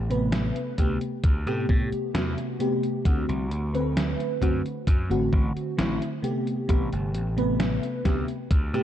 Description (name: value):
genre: vaporwave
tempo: 66 BPM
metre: 4/4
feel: straight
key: A dorian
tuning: A4 = 440 Hz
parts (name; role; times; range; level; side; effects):
- gritty slap bass; bass; 0.0-8.8 s; G1 to A2; -28 LUFS; equal; overdrive
- FM electric piano with soft pad layer; accompaniment; 0.1-8.8 s; C3 to B4; -27 LUFS; equal; analog chorus, analog delay
- gated 80s digital drum machine; drums; 0.1-8.8 s; hi-hat, snare drum; -30 LUFS; equal; gated reverb, gated reverb snare
- electronic kick drum; drums; 0.8-8.7 s; none; -22 LUFS; equal; none
room: light reverb, digital ambience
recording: dark, warm production, cassette tape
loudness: -23 LUFS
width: side -11 dB against mid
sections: 0.0-8.8 A section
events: none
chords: 0.0 Am9; 3.1 D7; 6.2 Am9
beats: 0.33 1.24 2.15 | 3.05 3.96 4.87 5.78 | 6.69 7.60 8.51